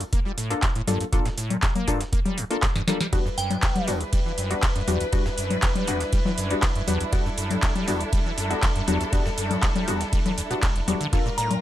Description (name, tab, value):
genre	acid house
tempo	120 BPM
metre	4/4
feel	straight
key	E minor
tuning	A4 = 443 Hz
part	acid bass, saw	riff	0.0-11.6 s	E1 to Bb3	-29 LUFS	equal	analog chorus, vintage 12-bit sampler grit
part	booming analog drum machine	drums	0.0-11.6 s	congas, handclaps, hi-hat, ride cymbal, shaker, snare drum	-27 LUFS	left 2 dB	none
part	breakbeat sampler-style drum kit	drums	0.1-11.6 s	hi-hat, snare drum	-37 LUFS	right 1 dB	none
part	electronic kick drum	drums	0.1-11.2 s	none	-24 LUFS	equal	none
part	filtered dub chord stab	stabs	0.5-11.2 s	G3 to A4	-30 LUFS	left 3 dB	wide subtle chorus, tape echo
part	rich chamber string section	sustained chords	3.1-11.6 s	G3 to B4	-30 LUFS	equal	sidechain pumping
part	glassy synth bell	melody	3.4-3.9, 11.4-11.6 s	G5 to Bb5	-31 LUFS	right 1 dB	chorus, phaser, tape echo
room	light reverb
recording	dark, warm production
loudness	-22 LUFS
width	side -13 dB against mid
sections	0.0-11.6 A section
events	drum fill 2.8-3.1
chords	0.0 Gm7; 3.1 Em7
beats	0.13 0.63 | 1.13 1.63 2.13 2.63 | 3.13 3.63 4.13 4.63 | 5.13 5.63 6.13 6.63 | 7.13 7.63 8.13 8.63 | 9.13 9.63 10.13 10.63 | 11.13